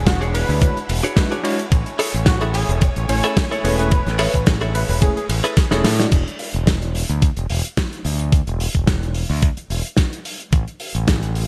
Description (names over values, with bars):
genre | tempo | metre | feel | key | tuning
nu-disco, nu disco | 109 BPM | 4/4 | swing 54% on 16ths | E mixolydian | A4 = 440 Hz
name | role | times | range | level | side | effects
unison lead | melody | 0.0-5.2 s | F#4 to C#5 | -29 LUFS | equal | vintage 12-bit sampler grit, digital delay
warm studio violin section | sustained chords | 0.0-6.1 s | A3 to G#5 | -34 LUFS | equal | sidechain pumping
growling fingered electric bass | bass | 0.0-11.4 s | E1 to A2 | -23 LUFS | equal | overdrive, tube saturation
direct-recorded clean electric guitar | riff | 0.1-6.1 s | D4 to E5 | -27 LUFS | equal | lush chorus
damped 70s drum kit | drums | 0.1-11.5 s | crash cymbal, hi-hat, ride cymbal, snare drum | -26 LUFS | equal | small room ambience, gated reverb
electronic kick drum | drums | 0.1-11.2 s | none | -19 LUFS | equal | small room ambience
bell-like tine electric piano | accompaniment | 0.6-6.2 s | G#3 to G#5 | -28 LUFS | equal | sidechain pumping
room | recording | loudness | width
light reverb, small room ambience | bright 1980s-style digital production | -19 LUFS | mono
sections
0.0-6.1 A section; 6.1-11.5 B section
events
drop 0.0-6.1; drum fill 5.6-6.1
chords
0.0 E13; 1.7 Amaj7; 6.1 E7(no3); 10.5 N.C.